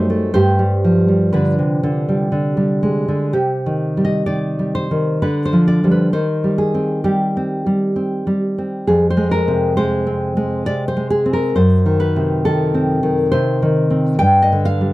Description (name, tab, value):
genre	romantic piece for solo classical guitar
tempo	58-69 BPM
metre	3/4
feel	rubato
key	C minor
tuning	A4 = 439 Hz
part	nylon-string guitar	solo	0.0-14.9 s	F2 to G5	-14 LUFS	equal	none
room	light reverb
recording	dry, close 1970s-style studio recording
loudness	-14 LUFS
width	side -18 dB against mid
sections	0.0-3.3 A section; 3.3-14.9 B section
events	none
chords	0.3 G; 3.3 Cm; 5.2 G5/D; 6.1 Cm/Eb; 8.9 Fm; 11.6 F#dim7; 14.2 G5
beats	| 0.33 1.32 2.31 | 3.32 4.28 5.21 | 6.13 7.04 7.96 | 8.87 9.78 10.67 | 11.57 12.47 13.34 | 14.22